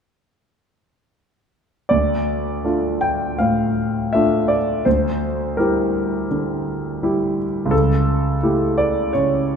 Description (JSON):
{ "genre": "classical, romantic character piece for solo piano", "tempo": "79-86 BPM", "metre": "4/4", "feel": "rubato", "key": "D minor", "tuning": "A4 = 440 Hz", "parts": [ { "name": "clear concert grand piano", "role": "solo", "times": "1.9-9.6 s", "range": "C#2 to G5", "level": "-17 LUFS", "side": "equal", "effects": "none" } ], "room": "moderate concert hall reverb, RT60 1.9 s", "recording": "minimal, uncompressed stereo recording", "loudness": "-17 LUFS", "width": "side -6 dB against mid", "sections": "1.9-9.6 A section", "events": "none", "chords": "1.9 Dm; 4.9 Em7b5/D; 7.7 A7/C#" }